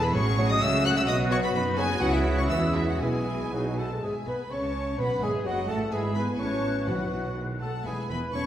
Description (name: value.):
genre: quick classical-period movement for symphony orchestra.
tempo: 115-130 BPM.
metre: 2/4.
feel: rubato.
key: unclear.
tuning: A4 = 440 Hz.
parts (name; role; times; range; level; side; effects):
rich chamber violin section; melody; 0.0-8.5 s; E5 to F#6; -35 LUFS; left 4 dB; none.
clear clarinet; second line; 0.0-8.5 s; E4 to F#5; -34 LUFS; left 1 dB; none.
large flute ensemble; second line; 0.0-8.5 s; E5 to F#6; -35 LUFS; equal; none.
mellow cor anglais; second line; 0.0-8.5 s; F#4 to C#5; -40 LUFS; equal; none.
rich chamber violin section; second line; 0.0-8.5 s; B4 to F#6; -39 LUFS; left 1 dB; none.
mellow bassoon; accompaniment; 0.0-8.5 s; B2 to C#4; -36 LUFS; right 1 dB; none.
rich chamber viola section; accompaniment; 0.0-8.4 s; E3 to G#4; -36 LUFS; right 2 dB; none.
mellow French horn section; sustained chords; 0.0-8.5 s; F#3 to C#4; -33 LUFS; left 2 dB; none.
clear trumpet section; stabs; 0.0-8.5 s; D#4 to C#5; -34 LUFS; equal; none.
rich studio cello section; bass; 0.0-8.4 s; E2 to E3; -32 LUFS; right 2 dB; none.
warm chamber double bass section; bass; 0.0-8.4 s; E1 to E2; -32 LUFS; right 2 dB; none.
timpani; percussion; 5.0-7.3 s; B2; -39 LUFS; equal; none.
room: wet recital hall reverb, RT60 1.6 s.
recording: heard from further back in the room.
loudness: -24 LUFS.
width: side -11 dB against mid.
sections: 0.0-4.0 A section; 4.0-8.5 B section.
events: none.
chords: 0.2 F#m/A; 1.1 B; 2.0 C#m; 3.0 E/B; 3.5 B; 4.0 Amaj9; 5.0 B5; 5.5 F#m6; 5.9 E/G#; 6.4 F#m7/A; 6.9 Bsus4; 7.4 B; 7.9 E5.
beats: | 0.15 0.62 | 1.08 1.55 | 2.01 2.50 | 3.01 3.53 | 4.04 4.51 | 4.99 5.46 | 5.92 6.39 | 6.87 7.37 | 7.86 8.35.